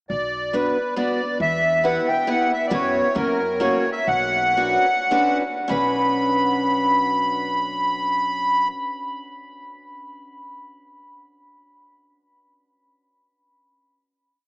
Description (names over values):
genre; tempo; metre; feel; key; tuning
musette waltz; 96-138 BPM; 3/4; straight; B minor; A4 = 438 Hz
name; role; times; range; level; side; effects
accordion; melody; 0.1-8.7 s; A#4 to B5; -20 LUFS; equal; light tremolo tuning
upright bass; bass; 0.1-8.7 s; B1 to F#2; -33 LUFS; equal; none
picked steel-string acoustic guitar; accompaniment; 0.5-8.7 s; A#3 to B4; -24 LUFS; equal; none
room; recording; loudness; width
wet cathedral reverb, RT60 6.6 s; in a vast, echoing space, small speaker sound; -18 LUFS; side -31 dB against mid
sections
0.1-5.7 A section; 5.7-9.4 final chord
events
slowing down 2.7-5.7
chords
0.1 Bm; 1.4 Em; 2.7 F#sus4; 3.1 F#; 4.1 Bmadd9